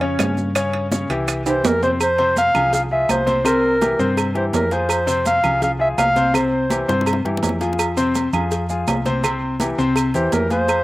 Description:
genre	latin, salsa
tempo	166 BPM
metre	4/4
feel	straight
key	F harmonic minor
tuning	A4 = 440 Hz
part	warm trombone section	second line	0.0-0.6 s	Db4	-28 LUFS	right 4 dB	slapback echo
part	clear grand piano	accompaniment	0.0-10.8 s	C3 to Db5	-22 LUFS	left 2 dB	none
part	hollow-body short-scale fingered electric bass	bass	0.0-10.8 s	C2 to G2	-25 LUFS	equal	none
part	bongos and cowbell	percussion	0.0-10.8 s	none	-30 LUFS	left 2 dB	none
part	congas	percussion	0.0-10.8 s	none	-28 LUFS	equal	none
part	timbales and agogo bells	percussion	0.0-10.8 s	none	-26 LUFS	right 5 dB	slapback echo
part	claves	percussion	0.2-10.8 s	none	-29 LUFS	right 5 dB	none
part	maracas	percussion	0.2-10.8 s	none	-32 LUFS	right 7 dB	none
part	mellow clarinet	melody	1.5-7.0, 10.2-10.8 s	Bb4 to F5	-18 LUFS	equal	none
room	little or no reverb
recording	recorded outdoors, with no room sound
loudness	-16 LUFS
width	side -17 dB against mid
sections	0.0-2.0 A section; 2.0-10.8 B section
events	drum fill 1.5-2.0, 6.9-7.8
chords	0.0 Bbm (rootless); 0.6 C#dim; 1.3 C; 2.0 Fm; 3.5 C7; 4.9 Fm; 6.3 C; 7.8 Fm; 9.2 C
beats	0.20 | 0.56 0.92 1.28 1.64 | 2.00 2.37 2.73 3.09 | 3.45 3.81 4.17 4.54 | 4.90 5.26 5.62 5.98 | 6.34 6.71 7.07 7.43 | 7.79 8.15 8.52 8.88 | 9.24 9.60 9.97 10.33 | 10.69

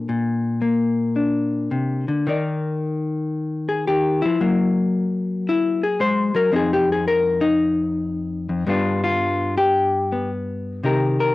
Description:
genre	solo jazz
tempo	112 BPM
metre	4/4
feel	swing 67% on 8ths, rubato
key	Eb major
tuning	A4 = 439 Hz
part	vintage hollow-body jazz guitar	solo	0.0-11.3 s	F2 to D5	-19 LUFS	left 2 dB	cassette tape
room	light reverb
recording	home recording on cassette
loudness	-19 LUFS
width	side -17 dB against mid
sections	0.0-2.3 A section; 2.3-11.3 B section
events	hollow-body jazz guitar solo 2.3-11.3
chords	0.0 Bbmaj9; 2.3 Eb5; 4.4 Gbadd9; 6.5 F5; 8.7 G7; 10.8 Cm7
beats	| 0.09 0.63 1.17 1.72 | 2.27 2.81 3.34 3.88 | 4.41 4.94 5.47 6.00 | 6.53 7.06 7.59 8.12 | 8.66 9.20 9.74 10.28 | 10.83

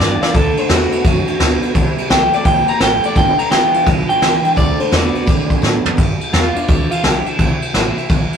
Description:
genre	rockabilly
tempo	170 BPM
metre	4/4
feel	swing 64% on 8ths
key	unclear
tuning	A4 = 440 Hz
part	electric guitar through a small old amp	melody	0.0-7.9 s	D4 to Bb5	-17 LUFS	equal	none
part	picked steel-string acoustic guitar	accompaniment	0.0-8.4 s	B2 to F#4	-25 LUFS	left 2 dB	none
part	electric guitar through a small old amp	riff	0.0-6.0 s	G2 to C4	-22 LUFS	right 3 dB	none
part	upright bass	bass	0.0-8.3 s	G1 to A2	-22 LUFS	equal	none
part	jazz brush drum kit	drums	0.0-8.4 s	kick drum, ride cymbal, snare drum, toms	-15 LUFS	equal	none
room	moderate stone room reverb, RT60 1.1 s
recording	rough rehearsal-room recording, tube saturation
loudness	-12 LUFS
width	side -7 dB against mid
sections	0.0-6.0 A section; 6.0-8.4 B section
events	drum fill 0.0-0.3, 5.6-6.0; clean electric guitar solo 0.0-6.0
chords	0.3 D7; 1.8 C7; 3.2 G7; 4.6 D7; 6.0 G7; 7.4 C7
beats	0.00 | 0.35 0.70 1.05 1.40 | 1.76 2.11 2.46 2.81 | 3.16 3.52 3.87 4.22 | 4.57 4.92 5.27 5.63 | 5.98 6.33 6.68 7.04 | 7.39 7.74 8.10

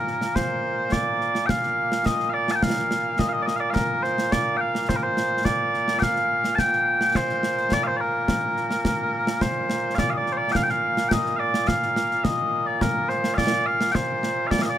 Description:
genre	scottish traditional, Scottish pipe music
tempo	106 BPM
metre	4/4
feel	straight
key	Bb major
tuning	A4 = 439 Hz
part	mellow small bagpipes	melody	0.0-14.8 s	Bb2 to A5	-22 LUFS	equal	none
part	concert snare drum and concert bass drum	drums	0.1-14.6 s	none	-26 LUFS	equal	none
room	light reverb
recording	none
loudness	-21 LUFS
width	side -11 dB against mid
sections	0.4-9.4 A section; 9.4-14.8 A section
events	none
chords	none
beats	| 0.36 0.93 1.49 2.06 | 2.62 3.19 3.76 4.32 | 4.89 5.45 6.02 6.59 | 7.15 7.72 8.28 8.85 | 9.42 9.98 10.55 11.11 | 11.68 12.25 12.81 13.38 | 13.94 14.51

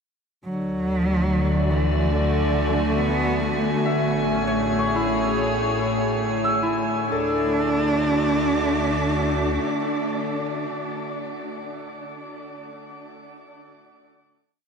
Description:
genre	ambient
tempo	72 BPM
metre	4/4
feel	straight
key	D lydian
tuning	A4 = 444 Hz
part	pedal harmonium	drone	0.4-10.7 s	D3	-36 LUFS	left 4 dB	none
part	warm cello	melody	0.5-10.7 s	D3 to D4	-26 LUFS	equal	ping-pong delay
part	evolving wavetable pad	sustained chords	1.0-11.1 s	A2 to D6	-25 LUFS	equal	chorus, built-in reverb
part	warm sub bass	bass	0.5-9.6 s	A1 to D2	-29 LUFS	equal	none
part	drifting glass-harmonics texture	texture	1.6-7.1 s	G#5	-34 LUFS	right 2 dB	chorus, built-in reverb
part	concert harp	arpeggios	3.9-10.7 s	C#4 to E6	-28 LUFS	left 2 dB	ping-pong delay
room	wet shimmer reverb, RT60 9.4 s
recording	none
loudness	-20 LUFS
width	side -6 dB against mid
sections	0.5-7.1 A section; 7.1-10.5 final chord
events	fade-in on synth texture 0.5-7.1; fade-out on sub bass 0.5-7.1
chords	0.5 D; 3.8 Amaj7; 7.1 D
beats	| 0.46 1.29 2.13 2.96 | 3.79 4.63 5.46 6.29 | 7.13 7.96 8.79 9.63

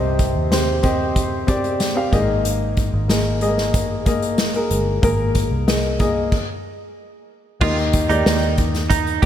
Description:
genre	piano-driven pop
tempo	93 BPM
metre	4/4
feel	straight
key	unclear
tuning	A4 = 439 Hz
part	dark grand piano	accompaniment	0.0-9.3 s	Ab2 to F5	-21 LUFS	left 1 dB	slapback echo
part	vintage muted fingered electric bass	bass	0.0-9.3 s	G1 to Eb2	-23 LUFS	equal	none
part	unplugged drum kit	drums	0.2-9.3 s	crash cymbal, hi-hat, kick drum, snare drum	-21 LUFS	equal	none
part	direct-recorded clean electric guitar	riff	7.6-9.3 s	Eb4 to G4	-22 LUFS	right 10 dB	lush chorus
room	moderate lush hall reverb, RT60 2.9 s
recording	big arena sound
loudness	-17 LUFS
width	side -10 dB against mid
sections	0.0-7.6 A section; 7.6-9.3 B section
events	stop 6.3-7.6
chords	0.0 Cm; 2.1 Absus2; 7.6 Eb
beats	0.51 1.16 1.80 | 2.45 3.09 3.74 4.38 | 5.03 5.68 6.32 6.97 | 7.61 8.26 8.90

